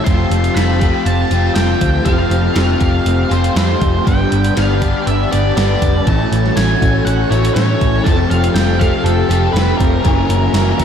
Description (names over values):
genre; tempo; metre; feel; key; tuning
rock, shoegaze and dream pop; 120 BPM; 4/4; straight; unclear; A4 = 440 Hz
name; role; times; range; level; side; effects
octave-fuzz lead guitar; melody; 0.0-10.8 s; A4 to C6; -22 LUFS; right 3 dB; distortion, analog delay
string machine, violas; sustained chords; 0.0-10.8 s; F#4 to B5; -23 LUFS; equal; ensemble chorus
direct-recorded clean electric guitar; arpeggios; 0.0-10.8 s; E3 to G4; -27 LUFS; right 8 dB; ensemble chorus, analog delay
overdriven electric guitar; riff; 0.0-10.8 s; F2 to F4; -19 LUFS; left 12 dB; lush chorus
overdriven semi-hollow guitar; riff; 0.0-10.8 s; F2 to F4; -22 LUFS; right 10 dB; reverse reverb
hollow-body short-scale picked electric bass; bass; 0.1-10.8 s; F1 to A2; -16 LUFS; equal; none
gated 80s digital drum machine; drums; 0.1-10.8 s; hi-hat, kick drum, snare drum; -18 LUFS; equal; gated reverb, gated reverb snare
room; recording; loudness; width
light reverb, digital ambience; none; -12 LUFS; side -8 dB against mid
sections
0.0-10.8 A section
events
none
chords
0.1 Fadd9; 4.1 G; 6.1 A6; 8.1 Fadd9; 10.1 F#7